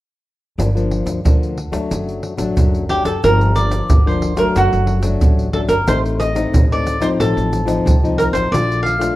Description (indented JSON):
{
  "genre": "samba and choro",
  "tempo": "91 BPM",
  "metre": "4/4",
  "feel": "straight",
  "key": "G minor",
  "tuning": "A4 = 440 Hz",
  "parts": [
    { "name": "nylon-string guitar", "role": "accompaniment", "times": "0.6-9.2 s", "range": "F#2 to F4", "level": "-20 LUFS", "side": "left 3 dB", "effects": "none" },
    { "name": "upright bass", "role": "bass", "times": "0.6-9.1 s", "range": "F#1 to D2", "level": "-20 LUFS", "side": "equal", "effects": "none" },
    { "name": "egg shaker, surdo and pandeiro", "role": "percussion", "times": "0.6-9.2 s", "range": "none", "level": "-17 LUFS", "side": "right 1 dB", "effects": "none" },
    { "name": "cavaquinho", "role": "melody", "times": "2.9-9.2 s", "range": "F#4 to F5", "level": "-19 LUFS", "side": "right 1 dB", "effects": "plate reverb" }
  ],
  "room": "light reverb",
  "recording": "worn, warbling old tape, cassette tape, warbly pitch drift",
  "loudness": "-14 LUFS",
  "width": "side -16 dB against mid",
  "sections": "0.6-3.2 A section; 3.2-9.2 B section",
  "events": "none",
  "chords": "0.6 Gm7; 1.9 D/F#; 3.2 Gm7; 4.6 D/F#; 5.9 F7/A; 8.5 Bbmaj7"
}